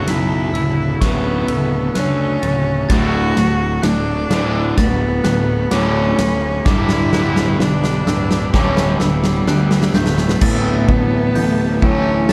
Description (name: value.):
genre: post-rock.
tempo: 64 BPM.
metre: 4/4.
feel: straight.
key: D major.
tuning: A4 = 441 Hz.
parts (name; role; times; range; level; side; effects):
bright cello; melody; 0.0-12.3 s; G3 to F#4; -23 LUFS; equal; tape echo.
rich symphonic string section; sustained chords; 0.0-12.3 s; F#4 to B5; -35 LUFS; equal; none.
clean electric guitar; arpeggios; 0.0-12.3 s; D2 to A4; -28 LUFS; equal; none.
glockenspiel with soft plastic mallets; arpeggios; 0.0-12.3 s; C#6 to A6; -33 LUFS; equal; tape echo.
distorted electric guitar; riff; 0.0-10.4 s; D2 to G3; -25 LUFS; equal; distortion.
fuzz picked electric bass; bass; 0.1-12.3 s; D1 to D2; -24 LUFS; equal; overdrive.
huge arena drum kit; drums; 0.1-12.3 s; crash cymbal, hi-hat, kick drum, ride cymbal, snare drum; -22 LUFS; equal; none.
raw garage guitar; riff; 2.9-12.3 s; D2 to A3; -25 LUFS; equal; overdrive, harmonic tremolo.
room: light reverb, small room ambience.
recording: dark, warm production.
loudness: -16 LUFS.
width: mono.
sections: 0.0-10.4 A section; 10.4-12.3 B section.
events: build-up 0.0-10.4; drum fill 0.0-10.4.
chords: 0.0 F#m7/D; 2.9 Dmaj7; 6.7 G/D; 10.4 A7/D.